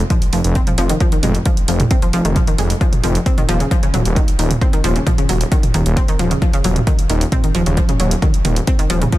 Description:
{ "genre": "driving peak-time techno", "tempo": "133 BPM", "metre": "4/4", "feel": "straight", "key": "unclear", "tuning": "A4 = 440 Hz", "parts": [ { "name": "analog pluck", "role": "riff", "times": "0.1-9.2 s", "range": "Db3 to C4", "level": "-20 LUFS", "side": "equal", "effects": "chorus, sidechain pumping, ping-pong delay" }, { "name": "electronic kick drum", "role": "drums", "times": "0.1-9.2 s", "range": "none", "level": "-17 LUFS", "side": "equal", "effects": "none" }, { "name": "techno drum kit", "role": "drums", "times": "0.1-9.2 s", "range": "hi-hat, toms", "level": "-23 LUFS", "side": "right 2 dB", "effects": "sidechain pumping on hats, sidechain pumping on cymbals, sidechain pumping on toms" }, { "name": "detuned saw bass", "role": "bass", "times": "0.3-9.0 s", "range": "Eb1 to F1", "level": "-17 LUFS", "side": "equal", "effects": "sidechain pumping" } ], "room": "digital ambience", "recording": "dense, heavily limited modern master", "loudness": "-13 LUFS", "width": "side -16 dB against mid", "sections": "0.0-9.2 A section", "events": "none", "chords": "none", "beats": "0.10 0.55 1.00 | 1.46 1.91 2.36 2.81 | 3.26 3.71 4.16 4.61 | 5.07 5.52 5.97 6.42 | 6.87 7.32 7.77 8.22 | 8.67 9.12" }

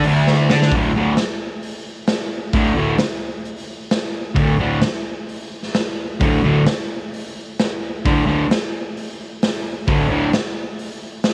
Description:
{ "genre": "garage rock duo or trio", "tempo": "131 BPM", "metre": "4/4", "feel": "straight", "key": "unclear", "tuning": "A4 = 439 Hz", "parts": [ { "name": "fuzz guitar", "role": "riff", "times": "0.0-10.3 s", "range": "D2 to D4", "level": "-18 LUFS", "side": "equal", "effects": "distortion, cassette tape" }, { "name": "raw garage drum kit", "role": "drums", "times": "0.0-11.3 s", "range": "hi-hat, kick drum, snare drum", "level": "-24 LUFS", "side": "equal", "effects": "none" } ], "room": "light reverb", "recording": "home recording on cassette", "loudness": "-19 LUFS", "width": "mono", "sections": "0.7-11.3 A section", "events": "drum fill 0.2-0.7", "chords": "0.0 D5", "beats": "0.25 | 0.70 1.16 1.62 2.07 | 2.53 2.99 3.45 3.91 | 4.37 4.83 5.29 5.74 | 6.20 6.66 7.12 7.58 | 8.04 8.49 8.95 9.41 | 9.87 10.33 10.79 11.24" }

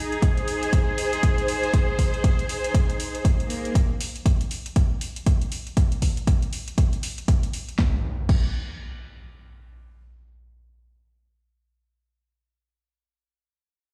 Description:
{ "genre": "deep house", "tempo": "119 BPM", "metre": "4/4", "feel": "swing 60% on 16ths", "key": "unclear", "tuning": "A4 = 441 Hz", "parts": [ { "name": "warm studio string section", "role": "texture", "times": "0.0-3.8 s", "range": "Bb3 to C5", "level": "-29 LUFS", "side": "equal", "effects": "sidechain pumping" }, { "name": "deep house drum kit", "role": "drums", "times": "0.1-8.5 s", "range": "crash cymbal, hi-hat, snare drum", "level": "-36 LUFS", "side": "equal", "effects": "none" }, { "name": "electronic kick drum", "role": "drums", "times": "0.2-8.5 s", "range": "none", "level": "-23 LUFS", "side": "equal", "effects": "overdrive" }, { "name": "impact", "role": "sound effects", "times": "7.8-11.7 s", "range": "none", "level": "-33 LUFS", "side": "equal", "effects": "none" } ], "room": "little or no reverb", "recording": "played on a big sound system in a bare room, stone room reverb", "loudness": "-24 LUFS", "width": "mono", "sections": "0.0-7.8 A section; 7.8-11.8 B section", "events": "none", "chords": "0.0 Ab; 3.5 Bbsus2; 5.8 N.C.", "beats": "0.22 0.73 1.23 | 1.74 2.24 2.74 3.25 | 3.75 4.26 4.76 5.26 | 5.77 6.27 6.78 7.28 | 7.79 8.29 8.79 9.30 | 9.80 10.31 10.81 11.31" }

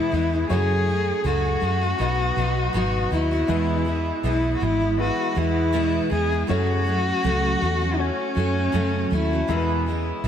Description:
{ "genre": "acoustic pop", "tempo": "80 BPM", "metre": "4/4", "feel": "swing 55% on 16ths", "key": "E major", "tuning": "A4 = 438 Hz", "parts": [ { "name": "dark cello", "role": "melody", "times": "0.0-10.3 s", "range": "C#4 to G#4", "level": "-24 LUFS", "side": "left 2 dB", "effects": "tape echo" }, { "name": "clear baby grand piano", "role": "accompaniment", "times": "0.0-10.3 s", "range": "G#3 to D#5", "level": "-32 LUFS", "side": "left 3 dB", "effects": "none" }, { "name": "picked steel-string acoustic guitar", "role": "accompaniment", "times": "0.0-10.3 s", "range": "E2 to F#4", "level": "-26 LUFS", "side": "right 2 dB", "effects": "double-tracked left and right" }, { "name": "vintage muted fingered electric bass", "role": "bass", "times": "0.1-10.3 s", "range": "G#1 to F#2", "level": "-25 LUFS", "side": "equal", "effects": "none" } ], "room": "moderate lush hall reverb, RT60 3.0 s", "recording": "dreamy mix soaked in reverb", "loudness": "-20 LUFS", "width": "side -9 dB against mid", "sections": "0.0-3.5 A section; 3.5-10.3 A section", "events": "none", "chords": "0.5 F#m; 2.0 B; 3.5 E; 6.5 F#m; 9.5 E", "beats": "| 0.49 1.24 1.99 2.74 | 3.49 4.24 4.99 5.74 | 6.49 7.24 7.99 8.74 | 9.49 10.23" }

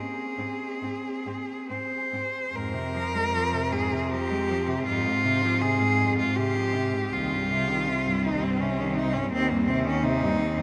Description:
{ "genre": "classical, lyrical piece for cello ensemble", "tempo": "66-85 BPM", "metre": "3/4", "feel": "rubato", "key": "F minor", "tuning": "A4 = 440 Hz", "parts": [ { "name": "clear cello", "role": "melody", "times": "0.0-10.6 s", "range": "Bb3 to C5", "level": "-30 LUFS", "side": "equal", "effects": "none" }, { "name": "clear cello", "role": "second line", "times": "0.0-10.6 s", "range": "C4", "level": "-34 LUFS", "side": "equal", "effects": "none" }, { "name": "rich cello", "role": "accompaniment", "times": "0.4-10.6 s", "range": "Eb2 to C4", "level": "-34 LUFS", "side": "equal", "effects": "none" }, { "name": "rich cello", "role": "bass", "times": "0.4-10.6 s", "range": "C2 to Ab2", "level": "-34 LUFS", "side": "equal", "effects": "none" } ], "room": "wet huge ambient reverb, RT60 8.4 s", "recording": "in a vast, echoing space", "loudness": "-26 LUFS", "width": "mono", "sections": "0.0-2.5 A section; 2.5-10.6 B section", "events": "none", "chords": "0.0 Ab; 2.5 Fm; 7.1 Cm; 9.3 Cm/Eb", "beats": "0.82 1.70 | 2.55 3.34 4.11 | 4.87 5.62 6.37 | 7.12 7.87 8.60 | 9.31 10.03" }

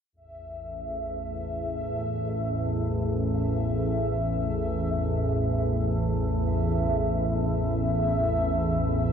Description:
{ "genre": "dark ambient drone", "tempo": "free time", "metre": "none", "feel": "none", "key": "unclear", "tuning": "A4 = 443 Hz", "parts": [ { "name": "organ-like drone", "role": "drone", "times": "0.6-9.1 s", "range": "A1 to E2", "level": "-26 LUFS", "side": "equal", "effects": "ensemble chorus, built-in reverb" }, { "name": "bubbling stepped-filter texture", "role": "texture", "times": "0.2-9.1 s", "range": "E5", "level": "-32 LUFS", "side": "equal", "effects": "chorus, built-in reverb" } ], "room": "wet cathedral reverb, RT60 5.9 s", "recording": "dreamy mix soaked in reverb", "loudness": "-25 LUFS", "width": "side -7 dB against mid", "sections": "0.2-9.1 A section", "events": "filter sweep on synth drone 0.2-9.1", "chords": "0.2 A5", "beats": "free time" }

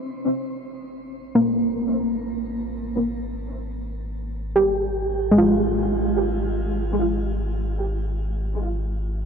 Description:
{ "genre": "ambient", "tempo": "free time", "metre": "none", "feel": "none", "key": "unclear", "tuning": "A4 = 441 Hz", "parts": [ { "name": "warm sub bass", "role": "bass", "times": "0.0-9.3 s", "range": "Ab1", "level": "-28 LUFS", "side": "equal", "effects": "none" }, { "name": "soft round pluck", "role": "arpeggios", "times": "1.4-8.8 s", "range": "Ab3 to G4", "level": "-22 LUFS", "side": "equal", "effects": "chorus, diffuse ambient delay, shimmer reverb" } ], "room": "wet cathedral reverb, RT60 7.1 s", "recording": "in a vast, echoing space", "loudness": "-21 LUFS", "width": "side -6 dB against mid", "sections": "0.1-9.3 A section", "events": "fade-in on sub bass 0.1-9.3", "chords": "0.1 Abmaj7(no3)", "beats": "free time" }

